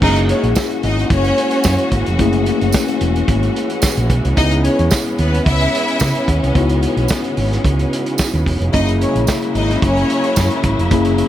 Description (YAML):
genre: disco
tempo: 110 BPM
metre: 4/4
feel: straight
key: unclear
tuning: A4 = 438 Hz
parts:
  - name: rich symphonic string section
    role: second line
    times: 0.0-10.6 s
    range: B3 to E5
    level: -20 LUFS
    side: equal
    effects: none
  - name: mellow tine electric piano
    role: accompaniment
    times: 0.0-11.3 s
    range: G#3 to G#4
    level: -20 LUFS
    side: left 4 dB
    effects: phaser
  - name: warm studio string section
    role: sustained chords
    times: 0.0-11.3 s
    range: C#3 to F#4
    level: -22 LUFS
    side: right 1 dB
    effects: none
  - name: hollow-body short-scale fingered electric bass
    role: bass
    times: 0.0-11.2 s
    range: E1 to C#3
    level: -18 LUFS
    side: right 1 dB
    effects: none
  - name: vintage drum kit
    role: drums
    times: 0.0-11.3 s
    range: crash cymbal, hi-hat, kick drum, snare drum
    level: -20 LUFS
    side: right 1 dB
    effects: none
  - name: tambourine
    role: percussion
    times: 0.6-10.5 s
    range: none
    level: -26 LUFS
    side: right 9 dB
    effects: none
room: small room ambience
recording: none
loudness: -13 LUFS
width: side -12 dB against mid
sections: 0.0-11.3 A section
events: none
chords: 0.0 F#9; 4.4 C#m9; 8.7 F#9